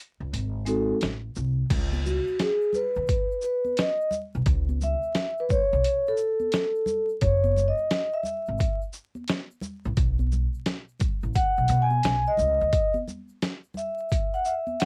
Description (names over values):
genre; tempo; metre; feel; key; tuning
hip hop, jazz-hop; 87 BPM; 4/4; swing 65% on 16ths; unclear; A4 = 440 Hz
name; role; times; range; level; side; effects
upright bass; bass; 0.2-12.7 s; F#1 to B2; -29 LUFS; equal; none
boom bap sampler-style drum kit; drums; 0.3-14.9 s; crash cymbal, hi-hat, kick drum, shaker, snare drum; -29 LUFS; equal; cassette tape
vibraphone with soft mallets; accompaniment; 0.7-14.9 s; G#3 to G#5; -27 LUFS; equal; none
egg shaker and congas; percussion; 1.7-14.9 s; none; -42 LUFS; equal; none
room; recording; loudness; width
light reverb; home recording on cassette, vinyl crackle; -26 LUFS; mono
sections
0.0-1.7 A section; 1.7-14.9 B section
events
break 0.0-1.7, 12.7-14.9; vibraphone solo 1.7-14.9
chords
0.3 G#7b9; 1.7 C#sus2; 4.5 B9sus4 (rootless); 7.2 F#7(no3); 10.0 B; 12.7 N.C.